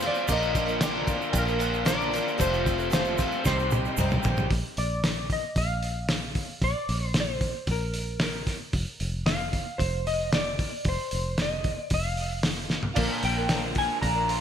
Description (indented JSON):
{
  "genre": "folk rock and heartland rock",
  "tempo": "113 BPM",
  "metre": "4/4",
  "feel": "straight",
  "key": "unclear",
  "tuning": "A4 = 440 Hz",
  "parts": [
    { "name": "clean lap steel guitar", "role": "melody", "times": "0.0-14.4 s", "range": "Bb4 to Bb5", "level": "-30 LUFS", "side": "equal", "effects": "analog chorus, ping-pong delay" },
    { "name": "picked twelve-string acoustic guitar", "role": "accompaniment", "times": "0.0-4.5, 13.0-14.4 s", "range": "Bb2 to Bb4", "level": "-34 LUFS", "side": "left 6 dB", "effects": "none" },
    { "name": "warm baby grand piano", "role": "accompaniment", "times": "0.0-4.3, 12.9-14.4 s", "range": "F4 to D6", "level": "-39 LUFS", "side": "right 9 dB", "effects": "none" },
    { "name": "tonewheel organ", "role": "sustained chords", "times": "0.0-4.5, 12.9-14.4 s", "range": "D3 to Bb4", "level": "-40 LUFS", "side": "right 3 dB", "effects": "none" },
    { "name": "raw garage guitar", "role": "riff", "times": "0.0-4.5, 13.0-14.4 s", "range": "F2 to G4", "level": "-31 LUFS", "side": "right 1 dB", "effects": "overdrive" },
    { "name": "fingered electric bass", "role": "bass", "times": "0.0-14.4 s", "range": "F1 to C2", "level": "-31 LUFS", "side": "equal", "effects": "none" },
    { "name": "cloth-damped thuddy drum kit", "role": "drums", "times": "0.0-14.4 s", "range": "crash cymbal, hi-hat, kick drum, snare drum, toms", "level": "-28 LUFS", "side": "equal", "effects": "gated reverb" },
    { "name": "egg shaker", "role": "percussion", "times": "0.0-4.4 s", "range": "none", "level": "-40 LUFS", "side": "right 21 dB", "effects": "none" }
  ],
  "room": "light reverb, studio reverb",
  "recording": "bright 1980s-style digital production",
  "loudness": "-24 LUFS",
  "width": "side -9 dB against mid",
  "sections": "0.0-4.5 A section; 4.5-14.4 B section",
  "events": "drum fill 3.4-4.5, 12.7",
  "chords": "0.3 Bb; 2.4 Fadd9; 3.4 Cm; 4.5 Bb; 8.7 F5; 13.0 Bb",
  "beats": "| 0.29 0.81 1.34 1.86 | 2.39 2.91 3.44 3.97 | 4.49 5.02 5.55 6.08 | 6.61 7.14 7.67 8.20 | 8.73 9.26 9.79 10.31 | 10.85 11.37 11.90 12.43 | 12.96 13.49 14.02"
}